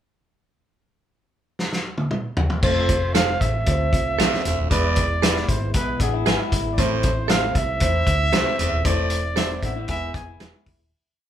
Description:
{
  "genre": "uptempo 1960s-style soul",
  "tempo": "116 BPM",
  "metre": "4/4",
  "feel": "straight",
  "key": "A harmonic minor",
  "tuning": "A4 = 441 Hz",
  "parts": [
    { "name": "warm soul drum kit", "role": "drums", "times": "1.6-10.8 s", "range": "crash cymbal, hi-hat, kick drum, snare drum, toms", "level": "-23 LUFS", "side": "equal", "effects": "none" },
    { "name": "breathy trumpet", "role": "melody", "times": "2.6-10.6 s", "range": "G#4 to G#5", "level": "-26 LUFS", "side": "right 3 dB", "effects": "none" },
    { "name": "clear concert grand piano", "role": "accompaniment", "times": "2.6-10.7 s", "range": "G#3 to C5", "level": "-28 LUFS", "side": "left 2 dB", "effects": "none" },
    { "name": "mellow tonewheel organ", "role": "sustained chords", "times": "2.6-10.9 s", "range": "G#3 to F4", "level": "-34 LUFS", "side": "equal", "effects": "slow rotary speaker, chorus vibrato" },
    { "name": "edgy baritone saxophone", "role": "riff", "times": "2.6-9.2 s", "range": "D2 to A2", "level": "-30 LUFS", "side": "right 5 dB", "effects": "none" },
    { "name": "vintage muted fingered electric bass", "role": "bass", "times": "2.6-10.9 s", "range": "D#1 to E2", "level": "-25 LUFS", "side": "equal", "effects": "none" },
    { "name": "direct-recorded clean electric guitar", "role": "stabs", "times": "3.1-10.5 s", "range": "G#4 to F5", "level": "-26 LUFS", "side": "right 6 dB", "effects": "none" },
    { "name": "electric guitar through a small old amp", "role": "riff", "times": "6.0-10.9 s", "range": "B3 to G#4", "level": "-30 LUFS", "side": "left 7 dB", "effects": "spring reverb" }
  ],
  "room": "light reverb",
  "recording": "band playing live in one room",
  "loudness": "-19 LUFS",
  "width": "side -10 dB against mid",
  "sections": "0.5-2.6 pickup bar; 2.6-10.9 pre-chorus",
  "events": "drum fill 1.6-2.6; fade-out 8.8-10.9",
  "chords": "0.5 N.C.; 2.6 F; 4.7 E; 6.8 Am; 8.8 Am/E; 9.9 E"
}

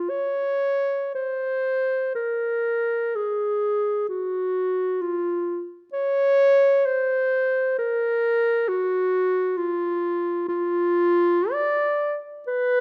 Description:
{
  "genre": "classical, free, expressive piece for unaccompanied clarinet",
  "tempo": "65 BPM",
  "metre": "3/4",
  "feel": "uneven beats, rubato",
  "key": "Bb minor",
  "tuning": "A4 = 439 Hz",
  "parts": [
    { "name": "mellow clarinet", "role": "solo", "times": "0.0-12.8 s", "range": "F4 to D5", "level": "-23 LUFS", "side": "equal", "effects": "none" }
  ],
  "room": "wet recital hall reverb, RT60 1.3 s",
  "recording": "close, detailed microphones",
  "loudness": "-23 LUFS",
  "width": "mono",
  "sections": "0.0-12.8 A section",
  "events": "none",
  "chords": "none"
}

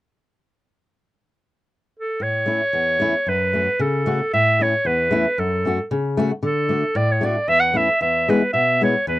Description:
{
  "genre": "alpine folk, alpine dance band",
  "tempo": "114 BPM",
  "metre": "2/4",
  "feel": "straight",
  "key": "A major",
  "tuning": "A4 = 440 Hz",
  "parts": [
    { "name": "bright clarinet", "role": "melody", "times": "2.0-9.2 s", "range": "A4 to F#5", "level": "-18 LUFS", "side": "right 1 dB", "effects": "none" },
    { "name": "fingerpicked steel-string acoustic guitar", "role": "accompaniment", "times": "2.2-9.2 s", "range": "E2 to F#4", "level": "-22 LUFS", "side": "left 2 dB", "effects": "none" }
  ],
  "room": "light reverb",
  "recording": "dry, close 1970s-style studio recording",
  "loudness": "-17 LUFS",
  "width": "side -16 dB against mid",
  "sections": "1.1-2.2 A section; 2.2-4.3 B section; 4.3-9.2 C section",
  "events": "none",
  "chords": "1.1 N.C.; 2.2 A; 3.3 F#m; 4.3 A; 5.4 F#m; 6.4 D; 7.5 A/E; 8.0 E"
}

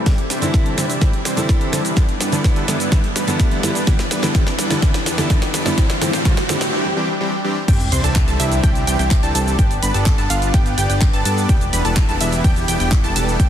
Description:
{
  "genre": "EDM, festival progressive house",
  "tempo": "126 BPM",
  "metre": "4/4",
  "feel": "straight",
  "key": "C major",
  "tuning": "A4 = 440 Hz",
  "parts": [
    { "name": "lush unison pad", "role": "sustained chords", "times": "0.0-13.5 s", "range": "E2 to E5", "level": "-27 LUFS", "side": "left 1 dB", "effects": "chorus, sidechain pumping" },
    { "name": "supersaw chords", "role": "riff", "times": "0.0-13.5 s", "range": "E3 to C5", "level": "-23 LUFS", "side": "equal", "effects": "sidechain pumping, low-pass filter, digital delay" },
    { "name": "picked steel-string acoustic guitar", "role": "accompaniment", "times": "0.1-6.6 s", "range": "D3 to E4", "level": "-23 LUFS", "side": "right 1 dB", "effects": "sidechain pumping, digital delay" },
    { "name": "electronic kick drum", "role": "drums", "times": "0.1-13.5 s", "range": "none", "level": "-16 LUFS", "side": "equal", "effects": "none" },
    { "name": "house drum kit", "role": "drums", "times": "0.1-13.5 s", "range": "cabasa, crash cymbal, handclaps, hi-hat, snare drum", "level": "-24 LUFS", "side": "right 1 dB", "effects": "soft clipping on snare, high-pass filter on snare, high-pass filter on hats, high-pass filter on perc, high-pass filter on cymbals, high-pass filter on room" },
    { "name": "riser and sub drop", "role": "sound effects", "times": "3.1-9.6 s", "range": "none", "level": "-28 LUFS", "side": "equal", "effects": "none" },
    { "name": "wide unison pluck", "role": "arpeggios", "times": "7.7-13.5 s", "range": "E5 to C6", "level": "-24 LUFS", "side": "right 1 dB", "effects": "sidechain pumping, digital delay" },
    { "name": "fat analog bass", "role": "bass", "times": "7.7-13.5 s", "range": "E1 to G2", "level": "-21 LUFS", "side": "equal", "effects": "sidechain pumping" }
  ],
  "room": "light reverb, digital ambience",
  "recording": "dense, heavily limited modern master",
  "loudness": "-15 LUFS",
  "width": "side -10 dB against mid",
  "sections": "0.0-7.7 A section; 7.7-13.5 B section",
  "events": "build-up 0.0-7.7; drum fill 0.0-6.7; filter sweep on supersaw synth 0.0-7.7; riser 3.1-6.7; break 6.7-7.7; drop 7.7-13.5; impact 7.7-9.6",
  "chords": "0.1 Cadd9; 2.0 G; 3.9 Em7; 5.8 Am7; 7.7 Cadd9; 9.6 G; 11.5 Em7"
}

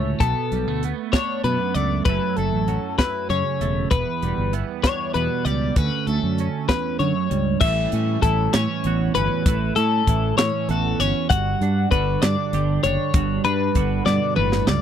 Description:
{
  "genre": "math rock and midwest emo",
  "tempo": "65 BPM (dotted quarters)",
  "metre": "6/8",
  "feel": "straight",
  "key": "unclear",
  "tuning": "A4 = 440 Hz",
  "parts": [
    { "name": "twelve-string electric guitar", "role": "accompaniment", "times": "0.0-14.8 s", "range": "D2 to G4", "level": "-25 LUFS", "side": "right 10 dB", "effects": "analog chorus" },
    { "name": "twelve-string electric guitar", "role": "arpeggios", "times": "0.0-14.8 s", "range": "A4 to F#5", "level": "-24 LUFS", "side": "left 9 dB", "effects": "none" },
    { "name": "fingered electric bass", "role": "bass", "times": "0.0-14.8 s", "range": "E1 to D3", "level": "-23 LUFS", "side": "equal", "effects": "none" },
    { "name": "crisp fusion drum kit", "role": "drums", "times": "0.2-14.8 s", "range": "crash cymbal, hi-hat, kick drum, snare drum, toms", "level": "-22 LUFS", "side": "equal", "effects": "none" }
  ],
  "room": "little or no reverb",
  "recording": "dry, close 1970s-style studio recording",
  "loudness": "-19 LUFS",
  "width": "side -9 dB against mid",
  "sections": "0.0-7.6 A section; 7.6-14.8 B section",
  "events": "drum fill 14.1-14.8",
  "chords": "0.2 Bm7; 2.1 F#m7; 3.9 Em7; 5.8 Dmaj9; 7.6 A9; 11.3 Gmaj7"
}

